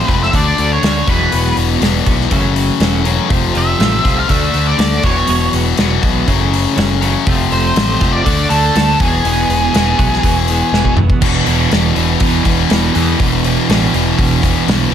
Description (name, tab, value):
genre	quiet-loud alternative rock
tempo	121 BPM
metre	4/4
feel	straight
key	unclear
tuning	A4 = 440 Hz
part	octave-fuzz lead guitar	melody	0.0-10.9 s	G#4 to F5	-17 LUFS	right 2 dB	distortion, slapback echo
part	twelve-string electric guitar	arpeggios	0.0-11.2 s	E2 to F#4	-21 LUFS	right 6 dB	tremolo
part	high-gain distorted guitar	riff	0.0-14.9 s	E2 to D4	-17 LUFS	left 11 dB	distortion
part	growling picked electric bass	bass	0.1-14.9 s	E1 to E2	-17 LUFS	equal	overdrive
part	loose indie drum kit	drums	0.1-14.9 s	crash cymbal, hi-hat, kick drum, snare drum, toms	-17 LUFS	equal	none
part	thick fuzz guitar	riff	11.2-14.9 s	E2 to E3	-16 LUFS	right 10 dB	distortion
room	light reverb, small room ambience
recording	none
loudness	-11 LUFS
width	side -9 dB against mid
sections	0.0-11.2 A section; 11.2-14.9 B section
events	drum fill 10.7-11.2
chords	0.3 D; 1.1 Eadd9; 2.3 F#m7; 3.3 F; 4.3 D; 5.0 Eadd9; 6.3 F#m7; 7.3 F; 8.3 D; 9.0 Eadd9; 11.2 E5